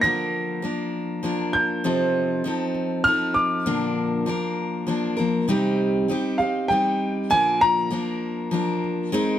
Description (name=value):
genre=folk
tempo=99 BPM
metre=3/4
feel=straight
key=unclear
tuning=A4 = 444 Hz
part: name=bright upright piano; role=melody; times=0.0-8.8 s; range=F5 to Bb6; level=-22 LUFS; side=equal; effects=none
part: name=picked steel-string acoustic guitar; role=accompaniment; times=0.0-9.4 s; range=Bb2 to Bb4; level=-23 LUFS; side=equal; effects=none
room=light reverb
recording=close, detailed microphones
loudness=-21 LUFS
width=side -11 dB against mid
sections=0.0-5.5 A section; 5.5-9.4 B section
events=none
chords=0.0 Bb/D; 1.9 F7/C; 3.7 Bb; 5.5 Cm; 7.3 Bb